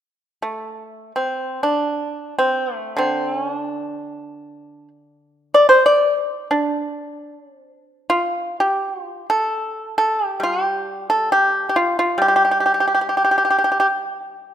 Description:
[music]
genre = chinese traditional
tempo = free time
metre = none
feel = none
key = D yu mode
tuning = A4 = 440 Hz
[part]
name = pipa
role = solo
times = 0.4-14.5 s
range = D3 to D5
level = -17 LUFS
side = equal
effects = none
[sound]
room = moderate concert hall reverb, RT60 1.9 s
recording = minimal, uncompressed stereo recording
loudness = -17 LUFS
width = side -10 dB against mid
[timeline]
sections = 0.0-8.6 A section; 8.6-14.5 B section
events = none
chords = none

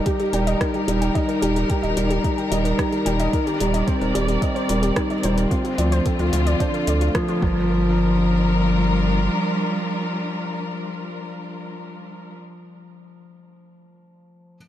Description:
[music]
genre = piano and strings electronica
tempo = 110 BPM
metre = 4/4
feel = straight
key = G minor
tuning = A4 = 440 Hz
[part]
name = warm studio string section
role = sustained chords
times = 0.0-12.4 s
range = D3 to D5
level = -27 LUFS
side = left 2 dB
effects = sidechain pumping
[part]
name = warbly dusty pluck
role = arpeggios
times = 0.0-7.9 s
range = F4 to G5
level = -28 LUFS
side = left 1 dB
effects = chorus, sidechain pumping, ping-pong delay
[part]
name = felt-muted upright piano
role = riff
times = 0.0-14.6 s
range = F3 to G4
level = -23 LUFS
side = equal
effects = ping-pong delay
[part]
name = deep house drum kit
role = drums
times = 0.1-7.4 s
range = hi-hat, rim click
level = -32 LUFS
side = equal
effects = overdrive
[part]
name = electronic kick drum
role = drums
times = 0.1-7.5 s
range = none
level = -24 LUFS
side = right 1 dB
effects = none
[part]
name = round analog bass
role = bass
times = 0.3-9.3 s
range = Eb1 to D2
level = -22 LUFS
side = equal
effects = tube saturation, sidechain pumping
[sound]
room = light reverb, digital ambience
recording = none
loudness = -18 LUFS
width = side -12 dB against mid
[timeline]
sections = 0.0-7.7 A section; 7.7-12.1 B section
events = drop 0.0-7.7; band accent 7.2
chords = 0.0 Eb; 3.3 Cm7/Eb; 5.5 Dm7; 7.4 Gm7

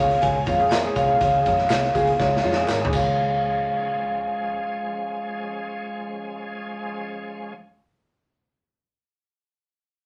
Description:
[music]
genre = uptempo 1960s-style soul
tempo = 122 BPM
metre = 4/4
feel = straight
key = Db major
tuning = A4 = 441 Hz
[part]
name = vibraphone with hard mallets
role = melody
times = 0.0-7.5 s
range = Db5 to Ab5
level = -26 LUFS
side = equal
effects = none
[part]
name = warm upright piano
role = accompaniment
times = 0.0-7.6 s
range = Ab3 to Db5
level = -30 LUFS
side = equal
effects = none
[part]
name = bright tonewheel organ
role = sustained chords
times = 0.0-7.5 s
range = F3 to Ab4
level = -35 LUFS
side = equal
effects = fast rotary speaker, overdrive, chorus vibrato
[part]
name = vintage muted fingered electric bass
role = bass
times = 0.0-7.5 s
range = Ab1 to F2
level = -32 LUFS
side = equal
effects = none
[part]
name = raw garage drum kit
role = drums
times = 0.1-3.0 s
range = crash cymbal, hi-hat, kick drum, snare drum, toms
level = -30 LUFS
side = equal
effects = none
[part]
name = electric guitar through a small old amp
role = riff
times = 0.5-2.9 s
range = F4 to Bb4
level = -31 LUFS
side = equal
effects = none
[part]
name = tambourine and handclaps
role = percussion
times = 0.5-3.4 s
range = none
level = -39 LUFS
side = equal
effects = none
[sound]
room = wet studio ambience, RT60 0.5 s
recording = none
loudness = -23 LUFS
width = mono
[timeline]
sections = 0.0-3.2 A section; 3.2-7.1 B section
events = drum fill 2.2-3.2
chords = 0.0 Db

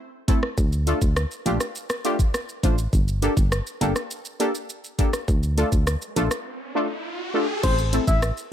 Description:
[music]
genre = dancehall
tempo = 102 BPM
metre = 4/4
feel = straight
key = D minor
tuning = A4 = 439 Hz
[part]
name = synth brass stab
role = accompaniment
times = 0.3-8.0 s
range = A3 to C5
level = -26 LUFS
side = equal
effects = chorus
[part]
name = island pop drum kit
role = drums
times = 0.3-8.5 s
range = crash cymbal, hi-hat, kick drum, rim click, shaker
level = -23 LUFS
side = equal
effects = none
[part]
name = solid FM bass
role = bass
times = 0.6-8.3 s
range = G1 to D2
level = -23 LUFS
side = equal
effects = none
[part]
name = riser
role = sound effects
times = 6.4-7.6 s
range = none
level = -32 LUFS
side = right 1 dB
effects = none
[part]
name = soft octave-layered synth lead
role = melody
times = 7.6-8.2 s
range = C5 to E5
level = -26 LUFS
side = left 3 dB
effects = chorus, phaser, ping-pong delay
[sound]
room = little or no reverb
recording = none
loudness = -21 LUFS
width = side -10 dB against mid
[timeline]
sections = 0.0-7.6 A section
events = riser 6.4-7.6; break 6.5-7.6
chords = 0.0 Am; 0.6 Dm; 2.9 Gmadd9; 5.3 Dm; 7.6 Am

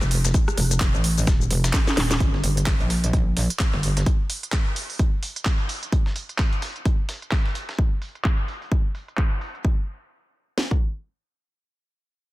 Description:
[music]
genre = bass house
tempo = 129 BPM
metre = 4/4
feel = swing 59% on 16ths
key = G minor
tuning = A4 = 440 Hz
[part]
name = metallic wobble bass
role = bass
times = 0.0-4.0 s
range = Eb1 to Bb1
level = -22 LUFS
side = equal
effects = chorus, tube saturation, sidechain pumping
[part]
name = dusty soul sampler-style drum kit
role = drums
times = 0.0-7.8 s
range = hi-hat, snare drum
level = -35 LUFS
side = right 1 dB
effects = high-pass filter on snare, sidechain pumping on hats, high-pass filter on hats
[part]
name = garage drum kit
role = drums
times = 0.0-9.6 s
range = handclaps, hi-hat, rim click, shaker, snare drum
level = -27 LUFS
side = equal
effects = low-pass filter on hats, low-pass filter on perc, low-pass filter on snare, low-pass filter on room
[part]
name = house drum kit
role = drums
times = 0.3-10.8 s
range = kick drum, snare drum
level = -21 LUFS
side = equal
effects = none
[sound]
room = digital ambience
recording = dense, heavily limited modern master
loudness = -21 LUFS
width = side -18 dB against mid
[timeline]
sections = 0.0-2.2 A section; 2.2-9.6 B section; 9.6-12.3 C section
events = drop 0.0-2.2; drum fill 1.7-2.2; filter sweep on drum 2.2-9.6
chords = none

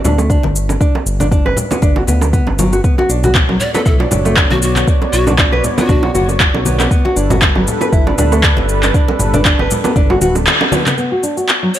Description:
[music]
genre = afro house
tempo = 118 BPM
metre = 4/4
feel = swing 55% on 16ths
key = unclear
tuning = A4 = 440 Hz
[part]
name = nylon-string guitar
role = arpeggios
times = 0.0-11.7 s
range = F#3 to B4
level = -18 LUFS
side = equal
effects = sidechain pumping, low-pass filter, ping-pong delay
[part]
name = smooth synth bass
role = bass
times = 0.0-10.5 s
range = D1 to D2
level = -17 LUFS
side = equal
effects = sidechain pumping
[part]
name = afro-pop drum kit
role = drums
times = 0.0-11.8 s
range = handclaps, shaker, toms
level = -17 LUFS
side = equal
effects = small room ambience
[part]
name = congas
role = percussion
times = 0.0-10.8 s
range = none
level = -21 LUFS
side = left 2 dB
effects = none
[part]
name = bongos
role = percussion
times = 0.1-11.0 s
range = none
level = -21 LUFS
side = right 5 dB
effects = none
[part]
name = electronic kick drum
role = drums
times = 0.3-10.1 s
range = none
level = -14 LUFS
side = equal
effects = small room ambience
[part]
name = warm analog pad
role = sustained chords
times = 3.2-11.8 s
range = G3 to D5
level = -22 LUFS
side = equal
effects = chorus, sidechain pumping
[part]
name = breathy mellow pan flute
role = melody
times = 3.6-6.3, 11.7-11.8 s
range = F#4 to D5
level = -21 LUFS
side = left 1 dB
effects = ping-pong delay
[sound]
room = light reverb, small room reverb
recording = none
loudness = -11 LUFS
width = side -12 dB against mid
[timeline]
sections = 0.0-11.0 A section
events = band accent 10.5; drum fill 10.7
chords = 0.0 G; 2.8 Bmadd9; 6.9 Gmaj7; 11.0 Bmadd9

